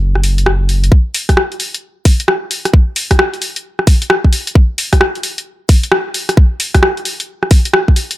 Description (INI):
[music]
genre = UK garage, two-step garage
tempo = 132 BPM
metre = 4/4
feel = swing 64% on 16ths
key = unclear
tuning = A4 = 440 Hz
[part]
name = saturated sub bass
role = bass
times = 0.0-0.9 s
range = F#1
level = -12 LUFS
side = equal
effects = none
[part]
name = punchy analog drum machine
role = drums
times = 0.2-8.2 s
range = hi-hat, rim click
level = -14 LUFS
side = equal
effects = none
[part]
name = electronic kick drum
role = drums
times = 0.9-7.9 s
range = none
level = -9 LUFS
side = equal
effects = none
[sound]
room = little or no reverb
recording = none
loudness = -11 LUFS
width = side -16 dB against mid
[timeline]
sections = 0.9-8.2 A section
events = build-up 0.9-8.2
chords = none